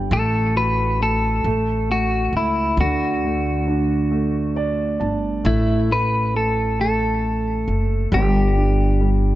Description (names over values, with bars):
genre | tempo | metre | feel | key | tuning
six-eight pop ballad | 45 BPM (dotted quarters) | 6/8 | straight | D major | A4 = 441 Hz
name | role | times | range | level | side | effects
dark concert grand piano | accompaniment | 0.0-9.4 s | D3 to A5 | -23 LUFS | right 1 dB | none
upright bass | bass | 0.0-9.4 s | F#1 to D2 | -21 LUFS | equal | none
clean electric guitar | melody | 0.1-9.1 s | E4 to B4 | -22 LUFS | left 1 dB | digital delay
room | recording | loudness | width
light reverb, studio reverb | dark, warm production, nothing above 7.8 kHz | -17 LUFS | side -15 dB against mid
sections
0.0-9.4 A section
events
grand piano fill 4.1-5.5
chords
0.1 F#madd11/A; 1.5 A; 2.8 D; 5.5 F#m; 8.1 G5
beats
| 0.12 1.45 | 2.79 4.12 | 5.45 6.79 | 8.12